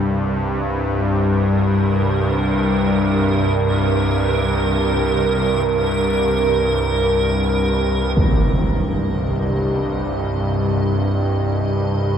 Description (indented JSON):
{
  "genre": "dark ambient drone",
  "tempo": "free time",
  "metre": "none",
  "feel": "none",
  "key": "C minor",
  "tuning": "A4 = 441 Hz",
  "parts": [
    { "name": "bowed-like drone", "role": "drone", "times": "0.0-12.2 s", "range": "C2 to G2", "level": "-18 LUFS", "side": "equal", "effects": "built-in reverb" },
    { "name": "icy glass pad", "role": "texture", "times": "1.8-12.2 s", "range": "Bb4 to Eb5", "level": "-22 LUFS", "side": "right 3 dB", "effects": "chorus, built-in reverb, shimmer reverb" },
    { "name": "impact", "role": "percussion", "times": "8.2-8.3 s", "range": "none", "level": "-22 LUFS", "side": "equal", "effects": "low-pass filter on sfx" }
  ],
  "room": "wet cathedral reverb, RT60 5.1 s",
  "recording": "worn, warbling old tape, cassette tape, warbly pitch drift",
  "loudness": "-16 LUFS",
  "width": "side -8 dB against mid",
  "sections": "0.0-8.2 A section; 8.2-12.2 B section",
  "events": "none",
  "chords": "0.0 C5"
}